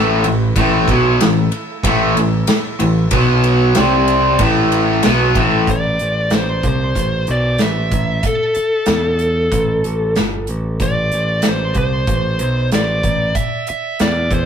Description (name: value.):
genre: hard rock.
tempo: 94 BPM.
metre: 4/4.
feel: straight.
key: A dorian.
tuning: A4 = 440 Hz.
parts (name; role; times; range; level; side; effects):
tonewheel organ; sustained chords; 0.0-5.7 s; A3 to D5; -30 LUFS; right 5 dB; none.
distorted electric guitar; riff; 0.0-5.7 s; A2 to C4; -21 LUFS; right 5 dB; overdrive.
overdriven semi-hollow guitar; riff; 0.0-5.7 s; A2 to C4; -15 LUFS; left 1 dB; spring reverb.
modern bright picked electric bass; bass; 0.0-14.5 s; G1 to E2; -19 LUFS; equal; none.
big rock drum kit; drums; 0.2-14.5 s; hi-hat, kick drum, ride cymbal, snare drum; -19 LUFS; equal; none.
bluesy overdriven lead guitar; melody; 5.7-14.5 s; A4 to E5; -19 LUFS; equal; distortion, tape echo.
room: moderate booth ambience, RT60 0.3 s.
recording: rough rehearsal-room recording.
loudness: -13 LUFS.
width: side -8 dB against mid.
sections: 0.0-5.7 A section; 5.7-14.5 B section.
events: none.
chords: 0.0 A5; 3.1 B5; 3.8 C5; 4.4 A5; 5.7 Am; 8.9 Esus4; 9.5 Am.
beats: | 0.57 1.21 1.84 2.48 | 3.12 3.76 4.40 5.04 | 5.68 6.32 6.96 7.60 | 8.24 8.88 9.52 10.16 | 10.80 11.44 12.08 12.72 | 13.36 14.00.